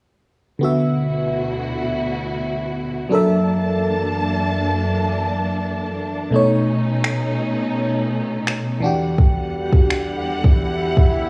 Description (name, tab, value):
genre	contemporary R&B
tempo	84 BPM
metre	4/4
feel	straight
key	unclear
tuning	A4 = 439 Hz
part	FM electric piano	accompaniment	0.6-11.3 s	B2 to E5	-23 LUFS	equal	chorus, phaser
part	warm symphonic string section	sustained chords	0.6-11.3 s	D2 to A5	-26 LUFS	equal	sidechain pumping
part	swell	sound effects	10.4-11.3 s	none	-32 LUFS	equal	none
part	smooth R&B drum kit	drums	7.0-11.1 s	finger snaps, kick drum	-18 LUFS	equal	overdrive
room	light reverb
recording	worn, warbling old tape, cassette tape, warbly pitch drift, small room reverb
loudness	-20 LUFS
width	mono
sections	0.6-11.3 A section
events	swell 10.4-11.3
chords	0.6 D69; 3.1 F#7alt; 6.3 B9; 8.8 Em9